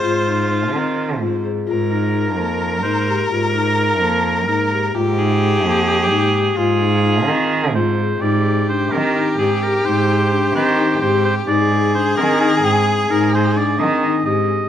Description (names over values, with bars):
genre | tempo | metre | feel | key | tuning
contemporary instrumental, chamber music in an uneven meter | 257 BPM (eighths) | 7/8 | straight | Ab lydian | A4 = 439 Hz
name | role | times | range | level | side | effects
clear oboe | melody | 0.0-14.7 s | F4 to Eb5 | -22 LUFS | right 2 dB | none
clear erhu | second line | 0.0-14.5 s | F4 to C5 | -21 LUFS | left 1 dB | none
marimba with soft mallets | arpeggios | 0.0-14.5 s | Bb3 to G5 | -21 LUFS | left 7 dB | none
warm cello | bass | 0.0-14.7 s | F2 to Eb3 | -20 LUFS | right 4 dB | none
room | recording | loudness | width
light reverb | close, detailed microphones | -15 LUFS | side -10 dB against mid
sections
0.0-8.2 A section; 8.2-14.7 B section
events
none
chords
0.0 Ab6; 1.7 Bbsus4; 6.6 Ab6; 8.2 Abmaj7